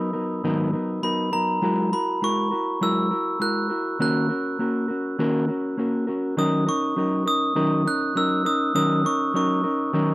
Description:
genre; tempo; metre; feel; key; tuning
indie pop; 101 BPM; 4/4; straight; unclear; A4 = 440 Hz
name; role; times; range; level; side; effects
glockenspiel with brass mallets; melody; 0.0-9.9 s; A#5 to F#6; -25 LUFS; right 1 dB; none
mellow electric guitar; accompaniment; 0.0-10.1 s; G#2 to A#4; -23 LUFS; equal; warbly pitch drift
room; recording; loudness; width
light reverb; recorded outdoors, with no room sound; -21 LUFS; side -19 dB against mid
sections
0.0-6.4 A section; 6.4-10.1 B section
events
none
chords
0.0 G#m9; 1.6 F#9; 4.0 D#m7

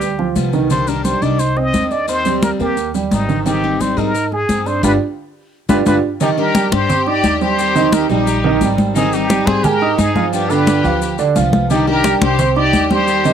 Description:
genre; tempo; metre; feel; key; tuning
latin, Cuban son and guajira; 175 BPM; 4/4; straight; C minor; A4 = 440 Hz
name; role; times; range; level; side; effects
trumpet with plunger mute; melody; 0.0-13.3 s; Eb4 to Eb5; -20 LUFS; left 1 dB; cassette tape, plate reverb
picked steel-string acoustic guitar; accompaniment; 0.0-13.3 s; C3 to Ab4; -23 LUFS; left 12 dB; cassette tape, plate reverb
dark grand piano; arpeggios; 0.0-13.3 s; D3 to Eb6; -17 LUFS; right 6 dB; cassette tape, plate reverb
upright bass; bass; 0.0-13.3 s; G1 to Ab2; -22 LUFS; left 2 dB; none
congas; percussion; 0.0-13.3 s; none; -19 LUFS; left 2 dB; none
maracas; percussion; 0.0-13.3 s; none; -31 LUFS; left 18 dB; none
clear studio violin section; second line; 6.2-13.3 s; D4 to Ab4; -21 LUFS; left 3 dB; cassette tape, plate reverb
room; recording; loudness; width
wet booth ambience, RT60 0.2 s; home recording on cassette; -13 LUFS; side -8 dB against mid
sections
0.0-6.2 A section; 6.2-13.3 B section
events
band accent 4.8-6.2; drum fill 5.2-6.2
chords
0.0 G7; 0.7 Cmadd9; 2.1 Eb6; 3.5 Abmaj7; 4.8 G7; 6.2 Cmadd9; 7.6 Eb6; 9.0 Abmaj7; 10.3 G7; 11.7 Cmadd9

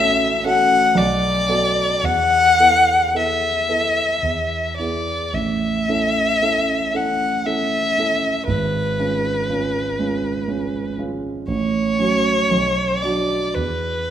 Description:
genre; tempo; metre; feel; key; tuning
classical, romantic duo for violin and grand piano; 53-61 BPM; 3/4; rubato; A major; A4 = 440 Hz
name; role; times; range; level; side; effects
warm violin; melody; 0.0-14.1 s; B4 to F#5; -18 LUFS; left 2 dB; none
dark concert grand piano; accompaniment; 0.0-14.1 s; G#1 to A4; -22 LUFS; right 3 dB; none
room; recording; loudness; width
wet recital hall reverb, RT60 1.4 s; minimal, uncompressed stereo recording; -17 LUFS; side -10 dB against mid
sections
0.0-14.1 A section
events
none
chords
0.0 F#m/A; 1.0 Bm7; 2.0 Esus4; 4.2 E; 5.3 A; 8.5 C#7/G#; 11.5 F#m/A; 12.5 Bm; 13.6 E5

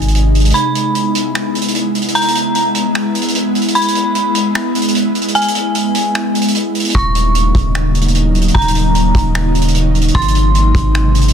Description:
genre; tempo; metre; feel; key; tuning
hip hop, atmospheric cloud-rap; 150 BPM; 4/4; half-time; E lydian; A4 = 440 Hz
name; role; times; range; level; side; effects
dark detuned synth bell; melody; 0.0-11.3 s; G#5 to C#6; -18 LUFS; equal; chorus, ping-pong delay
ethereal airy pad; sustained chords; 0.0-11.3 s; B#2 to E4; -16 LUFS; equal; ensemble chorus, built-in reverb, sidechain pumping
long sustained 808-style bass; bass; 0.0-0.5, 6.9-11.3 s; D#1 to G#1; -13 LUFS; equal; none
vintage drum kit; drums; 0.0-11.3 s; finger snaps, hi-hat, kick drum; -19 LUFS; right 1 dB; soft clipping on snare
room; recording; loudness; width
light reverb, small room reverb; dense, heavily limited modern master; -12 LUFS; side -8 dB against mid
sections
0.0-11.3 A section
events
break 0.5-6.9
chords
0.0 G#; 0.5 E; 6.9 D#m7; 10.1 G#

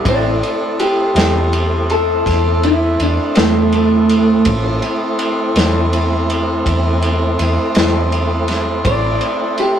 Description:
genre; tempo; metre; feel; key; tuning
slow blues; 55 BPM (dotted quarters); 12/8; straight; unclear; A4 = 440 Hz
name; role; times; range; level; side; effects
electric guitar through a small old amp; accompaniment; 0.0-8.0 s; A2 to E4; -21 LUFS; left 2 dB; harmonic tremolo
tonewheel organ; sustained chords; 0.0-9.8 s; F3 to E4; -23 LUFS; right 1 dB; slow rotary speaker
warm horn section; sustained chords; 0.0-9.8 s; E4 to C5; -21 LUFS; right 1 dB; none
electric guitar through a small old amp; melody; 0.1-9.8 s; A3 to D5; -15 LUFS; right 1 dB; none
vintage muted fingered electric bass; bass; 0.1-9.2 s; A1 to E2; -18 LUFS; equal; none
crunchy breakbeat drum kit; drums; 0.1-9.8 s; kick drum, ride cymbal, snare drum; -20 LUFS; equal; none
room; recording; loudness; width
moderate studio ambience, RT60 0.5 s; rough rehearsal-room recording; -13 LUFS; side -9 dB against mid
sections
0.0-9.8 A section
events
clean electric guitar solo 0.0-9.8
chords
0.1 Am

